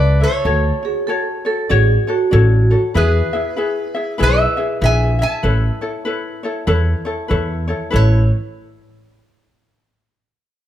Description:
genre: Hawaiian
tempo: 96 BPM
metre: 4/4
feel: swing 61% on 8ths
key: A major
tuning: A4 = 439 Hz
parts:
  - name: lap resonator guitar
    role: melody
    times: 0.0-8.3 s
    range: G#4 to A5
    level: -20 LUFS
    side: equal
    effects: none
  - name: ukulele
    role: accompaniment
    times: 0.0-8.2 s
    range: E4 to E5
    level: -21 LUFS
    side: left 3 dB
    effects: none
  - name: upright bass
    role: bass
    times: 0.0-8.3 s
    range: A1 to E2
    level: -15 LUFS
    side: equal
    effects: none
  - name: vibraphone with soft mallets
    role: second line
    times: 0.8-2.8, 7.9-8.3 s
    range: E4 to A4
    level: -20 LUFS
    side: right 3 dB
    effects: none
room: light reverb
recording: none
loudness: -14 LUFS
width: side -11 dB against mid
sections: 0.0-7.9 A section; 7.9-10.4 B section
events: none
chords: 0.5 Dmaj7; 2.9 E; 5.4 Aadd9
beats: | 0.45 1.08 1.70 2.32 | 2.95 3.57 4.19 4.82 | 5.44 6.06 6.68 7.31 | 7.93

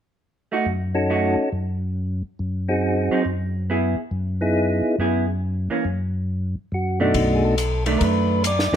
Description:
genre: soul jazz organ trio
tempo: 139 BPM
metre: 4/4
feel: swing 65% on 8ths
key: B mixolydian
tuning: A4 = 441 Hz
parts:
  - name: vintage hollow-body jazz guitar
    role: accompaniment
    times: 0.5-8.8 s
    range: D#3 to G#4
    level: -23 LUFS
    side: right 3 dB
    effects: none
  - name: mellow tonewheel organ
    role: bass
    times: 0.7-8.8 s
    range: B1 to F#2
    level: -24 LUFS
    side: left 1 dB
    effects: overdrive, chorus vibrato, slow rotary speaker
  - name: percussive tonewheel organ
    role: melody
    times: 0.9-8.8 s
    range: B2 to D5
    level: -21 LUFS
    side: equal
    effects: slow rotary speaker, plate reverb
  - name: compact cocktail drum kit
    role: drums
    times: 7.1-8.8 s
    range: hi-hat, kick drum, ride cymbal, snare drum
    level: -25 LUFS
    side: left 1 dB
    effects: none
room: light reverb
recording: none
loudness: -20 LUFS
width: side -9 dB against mid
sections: 0.2-7.1 A section; 7.1-8.8 B section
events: none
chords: 0.2 F#m6; 2.0 G#7/F#; 3.7 F#13sus4; 5.4 N.C.; 7.1 B7#9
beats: | 0.23 0.66 1.09 1.52 | 1.96 2.39 2.82 3.25 | 3.69 4.12 4.55 4.98 | 5.42 5.85 6.28 6.71 | 7.15 7.58 8.01 8.45

